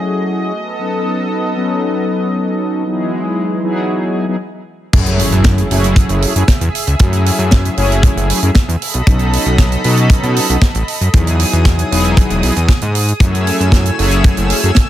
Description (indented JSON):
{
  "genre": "nu-disco, nu disco",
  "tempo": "116 BPM",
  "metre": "4/4",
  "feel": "straight",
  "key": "F# dorian",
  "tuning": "A4 = 443 Hz",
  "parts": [
    { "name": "mellow synth brass", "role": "accompaniment", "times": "0.0-14.7 s", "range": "F#3 to A4", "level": "-18 LUFS", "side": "left 1 dB", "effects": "chorus, vintage 12-bit sampler grit, sidechain pumping, digital delay" },
    { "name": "lush unison pad", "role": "sustained chords", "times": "0.0-14.9 s", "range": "E3 to E6", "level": "-22 LUFS", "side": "equal", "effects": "chorus, sidechain pumping" },
    { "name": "fat analog bass", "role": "bass", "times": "4.9-14.7 s", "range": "E1 to B2", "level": "-15 LUFS", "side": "equal", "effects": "none" },
    { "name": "kick drum", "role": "drums", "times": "4.9-14.9 s", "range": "none", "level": "-11 LUFS", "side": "equal", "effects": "none" },
    { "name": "tight funk drum kit", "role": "drums", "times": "4.9-14.9 s", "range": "crash cymbal, hi-hat, snare drum", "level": "-20 LUFS", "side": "right 3 dB", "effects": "none" },
    { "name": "impact", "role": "sound effects", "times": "4.9-7.0 s", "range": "none", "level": "-23 LUFS", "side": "equal", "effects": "none" }
  ],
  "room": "small room ambience",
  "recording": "none",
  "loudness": "-11 LUFS",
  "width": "side -13 dB against mid",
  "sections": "0.0-4.9 A section; 4.9-14.9 B section",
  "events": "filter sweep on analog polysynth 0.0-4.9; break 4.4-4.9; drop 4.9-14.9; impact 4.9-7.0",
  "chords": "0.0 F#m9; 0.5 B7; 2.9 Emaj7; 4.9 F#m9; 8.8 B7; 11.1 Emaj7; 13.2 F#m9",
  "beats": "0.28 | 0.80 1.31 1.83 2.35 | 2.87 3.38 3.90 4.42 | 4.93 5.45 5.97 6.49 | 7.00 7.52 8.04 8.55 | 9.07 9.59 10.11 10.62 | 11.14 11.66 12.18 12.69 | 13.21 13.73 14.24 14.76"
}